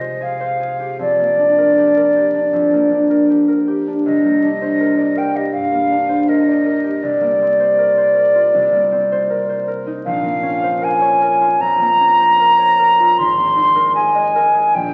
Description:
classical, impressionist duo for flute and harp; 79 BPM; 4/4; uneven beats, rubato; Bb minor from 10.1 s; A4 = 440 Hz
silver concert flute; melody; 0.0-14.9 s; D5 to C6; -16 LUFS; equal
concert harp; accompaniment; 0.0-14.9 s; Ab1 to Eb5; -21 LUFS; equal
wet recital hall reverb, RT60 1.4 s; very old 78 rpm record, vinyl crackle, nothing above 7.7 kHz; -15 LUFS; mono
0.0-14.9 A section
0.0 Fmadd9; 1.0 Gm7/F; 4.1 Cm9; 7.0 Bbadd9/C; 8.6 Cm9; 10.1 Bbmadd9; 13.2 Abadd9

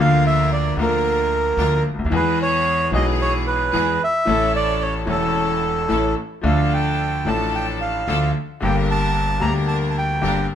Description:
tango; 111 BPM; 4/4; rubato; D harmonic minor; A4 = 440 Hz
bandoneon; melody; 0.0-10.5 s; A4 to Bb5; -21 LUFS; right 2 dB
bright concert grand piano; accompaniment; 0.0-10.4 s; E1 to A4; -22 LUFS; left 4 dB
bright studio string section; stabs; 0.0-10.5 s; B3 to Bb4; -29 LUFS; left 1 dB
upright bass; bass; 0.0-10.5 s; E1 to E2; -24 LUFS; right 2 dB
light reverb; minimal, uncompressed stereo recording; -17 LUFS; side -9 dB against mid
0.0-10.6 A section
0.0 Bb/D; 2.1 E; 4.3 A; 6.4 Dm; 8.6 Gm

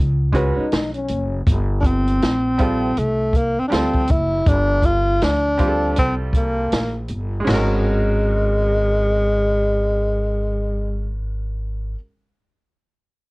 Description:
hip hop, jazz-hop; 80 BPM; 4/4; swing 61% on 16ths; A4 = 435 Hz
upright bass; bass; 0.0-11.9 s; F#1 to D2; -22 LUFS; equal
breathy trombone; second line; 0.3-1.4 s; C#4 to D#4; -25 LUFS; left 3 dB; cassette tape
bright upright piano; accompaniment; 0.3-12.0 s; G3 to B4; -25 LUFS; right 2 dB; cassette tape
open jazz drum kit; drums; 0.3-7.7 s; crash cymbal, hi-hat, kick drum, snare drum, toms; -20 LUFS; equal; cassette tape
breathy tenor saxophone; melody; 1.8-11.2 s; G#3 to F4; -20 LUFS; equal; cassette tape
light reverb; home recording on cassette; -17 LUFS; side -24 dB against mid
0.0-7.5 A section; 7.5-10.5 B section
0.0 G#m11; 1.5 Gm11; 7.5 G#9sus4

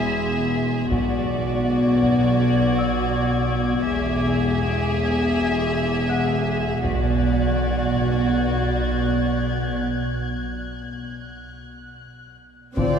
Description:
cinematic, suspense film score; 81 BPM; 4/4; straight; B dorian; A4 = 436 Hz
warm chamber violin section; second line; 0.0-13.0 s; F4 to E5; -26 LUFS; left 1 dB
rich symphonic double bass section; bass; 0.0-13.0 s; E1 to D2; -25 LUFS; right 1 dB
warm symphonic cello section; bass; 0.0-13.0 s; D2 to B2; -24 LUFS; equal
celesta; texture; 0.0-9.8 s; D5 to F#6; -37 LUFS; left 5 dB
warm symphonic violin section; texture; 0.0-12.4 s; B5 to A6; -34 LUFS; left 3 dB
solo taiko drums; drums; 0.9-2.4, 6.8-8.3, 12.8-13.0 s; -33 LUFS; equal
warm symphonic violin section; melody; 12.8-13.0 s; D5; -24 LUFS; left 4 dB
dark symphonic viola section; accompaniment; 12.8-13.0 s; C4; -26 LUFS; right 3 dB
warm French horn section; sustained chords; 12.8-13.0 s; C4 to F4; -25 LUFS; left 1 dB
concert harp; riff; 12.8-13.0 s; D3; -24 LUFS; left 10 dB
wet cathedral reverb, RT60 5.2 s; minimal, uncompressed stereo recording, lossy compression artefacts; -19 LUFS; side -7 dB against mid
0.0-12.8 A section
break 9.8-12.8
0.0 E; 0.9 Bm; 3.9 E; 6.8 Bm; 9.8 F#madd9; 11.3 N.C.

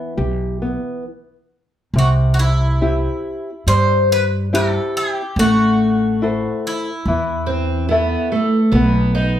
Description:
fado-style ballad; 71 BPM; 4/4; rubato; A4 = 440 Hz
nylon-string guitar; accompaniment; 0.0-9.4 s; C3 to E5; -20 LUFS; left 1 dB
upright bass; bass; 0.2-9.4 s; A1 to G2; -18 LUFS; equal
Greek bouzouki; melody; 2.0-7.4 s; E4 to C5; -21 LUFS; equal
fingerpicked twelve-string acoustic guitar; second line; 7.5-9.4 s; A3 to D#4; -18 LUFS; right 2 dB
moderate large studio reverb, RT60 0.9 s; band playing live in one room; -15 LUFS; side -11 dB against mid
0.0-1.9 A section; 1.9-9.4 A section
stop 1.1-1.9
0.0 Em; 1.9 C; 5.4 Am; 8.7 B

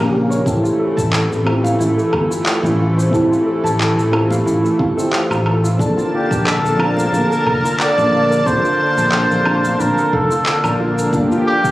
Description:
sunset chillout; 90 BPM; 4/4; swing 55% on 16ths; F major; A4 = 440 Hz
mellow FM electric piano; accompaniment; 0.0-11.7 s; Bb3 to A5; -21 LUFS; equal; chorus, phaser, auto-pan, ping-pong delay, shimmer reverb
lush unison pad; sustained chords; 0.0-11.7 s; Db3 to A5; -22 LUFS; equal; chorus, shimmer reverb
soft round pluck; arpeggios; 0.0-11.7 s; D4 to A5; -22 LUFS; equal; analog chorus, ping-pong delay, shimmer reverb
sustaining fretless electric bass; bass; 0.0-11.7 s; F1 to Bb1; -19 LUFS; equal; lush chorus
electronic shaker, handclaps and woodblock; drums; 0.3-11.7 s; -23 LUFS; equal
electronic kick drum; drums; 0.5-11.7 s; -22 LUFS; equal
congas; percussion; 1.6-9.8 s; -30 LUFS; equal
trumpet with cup mute; melody; 6.1-11.7 s; G4 to D5; -17 LUFS; equal; digital delay, shimmer reverb
light reverb; recorded on a phone in the room, club reverb; -14 LUFS; side -16 dB against mid
0.0-11.7 A section
0.5 Fmaj7; 5.8 Bbmaj7; 11.1 Gm7

